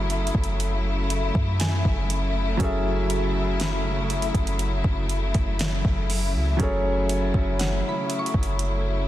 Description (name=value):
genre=contemporary R&B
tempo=60 BPM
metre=4/4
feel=straight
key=F# minor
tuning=A4 = 441 Hz
part: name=felt-muted upright piano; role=accompaniment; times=0.0-9.1 s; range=F#3 to E5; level=-29 LUFS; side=right 1 dB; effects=none
part: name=warm studio string section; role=sustained chords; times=0.0-9.1 s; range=C#3 to E4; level=-29 LUFS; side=left 3 dB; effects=none
part: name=clean 808-style bass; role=bass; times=0.0-9.1 s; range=F#1 to F#2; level=-26 LUFS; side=equal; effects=none
part: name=smooth R&B drum kit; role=drums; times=0.1-8.8 s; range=hi-hat, kick drum, snare drum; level=-27 LUFS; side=equal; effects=none
part: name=mallet-like synth pluck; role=texture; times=1.6-9.1 s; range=F#5 to C#6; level=-35 LUFS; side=right 1 dB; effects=chorus, digital delay
room=light reverb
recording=dense, heavily limited modern master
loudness=-22 LUFS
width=side -13 dB against mid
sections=0.0-9.1 A section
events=none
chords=0.0 F#m7